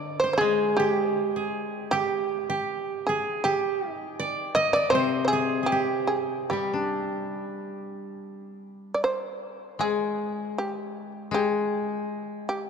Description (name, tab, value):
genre	japanese traditional, Japanese chamber music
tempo	78 BPM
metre	4/4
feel	rubato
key	G miyako bushi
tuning	A4 = 442 Hz
part	shamisen	melody	0.0-12.7 s	G4 to Eb5	-28 LUFS	right 1 dB	none
part	koto	second line	0.0-8.6 s	G4 to Eb5	-28 LUFS	right 5 dB	none
part	koto	accompaniment	0.0-12.7 s	C3 to D4	-29 LUFS	left 5 dB	none
room	wet church reverb, RT60 4.0 s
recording	dark, warm production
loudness	-24 LUFS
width	side -6 dB against mid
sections	0.0-8.2 A section; 8.2-12.7 B section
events	none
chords	none